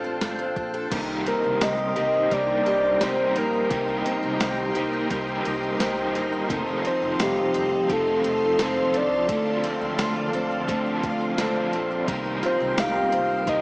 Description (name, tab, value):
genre	dream pop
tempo	86 BPM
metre	4/4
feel	straight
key	C dorian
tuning	A4 = 440 Hz
part	soft octave-layered synth lead	melody	0.0-13.6 s	G4 to F5	-24 LUFS	equal	chorus, digital delay
part	string machine, full ensemble	sustained chords	0.0-13.6 s	Eb4 to C6	-30 LUFS	equal	ensemble chorus
part	picked twelve-string acoustic guitar	arpeggios	0.0-13.6 s	Eb3 to A4	-29 LUFS	equal	wide subtle chorus, digital delay
part	upright bass	bass	0.0-13.6 s	F1 to D2	-34 LUFS	equal	none
part	gated 80s digital drum machine	drums	0.2-13.6 s	crash cymbal, hi-hat, kick drum, snare drum, tambourine	-29 LUFS	equal	gated reverb, gated reverb snare
part	overdriven semi-hollow guitar	accompaniment	0.9-13.6 s	C3 to Bb4	-28 LUFS	right 1 dB	tremolo, analog chorus
part	shimmering bell with halo	texture	1.6-2.6, 8.9-13.4 s	F4 to Bb4	-37 LUFS	equal	none
room	moderate plate reverb, RT60 3.6 s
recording	small speaker sound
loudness	-21 LUFS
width	side -27 dB against mid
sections	0.9-13.6 A section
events	none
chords	0.0 G9sus4; 0.9 Cm7; 6.5 F7; 9.3 Dm7; 12.1 Cm7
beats	0.22 | 0.92 1.61 2.31 3.01 | 3.71 4.40 5.10 5.80 | 6.50 7.19 7.89 8.59 | 9.29 9.98 10.68 11.38 | 12.08 12.78 13.47